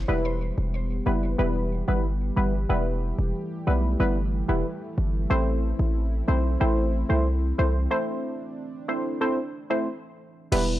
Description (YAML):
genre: dancehall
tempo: 92 BPM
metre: 4/4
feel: straight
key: E minor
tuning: A4 = 442 Hz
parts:
  - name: warm analog pad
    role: sustained chords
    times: 0.0-10.5 s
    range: E3 to G4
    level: -35 LUFS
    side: equal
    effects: chorus
  - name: hard-hitting 808-style bass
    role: bass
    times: 0.0-10.8 s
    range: E1 to C2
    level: -24 LUFS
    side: equal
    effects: none
  - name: wavetable chord stab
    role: accompaniment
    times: 0.1-10.8 s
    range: G3 to C5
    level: -27 LUFS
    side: equal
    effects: none
  - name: pop drum kit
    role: drums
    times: 10.5-10.7 s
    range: crash cymbal, hi-hat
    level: -35 LUFS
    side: left 1 dB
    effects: none
room: little or no reverb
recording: dry, gritty hardware recording, cassette tape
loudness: -23 LUFS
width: side -14 dB against mid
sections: 0.1-10.5 A section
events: break 7.9-10.5; kick muted 10.5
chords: 0.1 Em; 5.3 Am